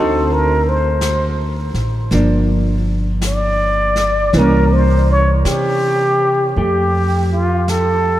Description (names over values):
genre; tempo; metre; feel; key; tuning
jazz ballad; 54 BPM; 4/4; swing 66% on 8ths; F major; A4 = 444 Hz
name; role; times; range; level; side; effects
trumpet with plunger mute; melody; 0.0-8.2 s; F4 to D5; -17 LUFS; equal; none
vintage hollow-body jazz guitar; accompaniment; 0.0-8.2 s; D3 to G4; -21 LUFS; right 1 dB; none
upright bass; bass; 0.0-8.2 s; G1 to C3; -17 LUFS; equal; none
jazz brush drum kit; drums; 1.0-8.2 s; brushed snare drum, hi-hat, snare drum; -30 LUFS; left 1 dB; none
room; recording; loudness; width
wet cathedral reverb, RT60 5.0 s; in a vast, echoing space; -13 LUFS; side -13 dB against mid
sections
0.0-6.6 A section; 6.6-8.2 B section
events
muted trumpet solo 0.0-6.6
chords
0.0 D7b9; 2.1 Gm7; 4.3 C7b9; 6.6 Fadd9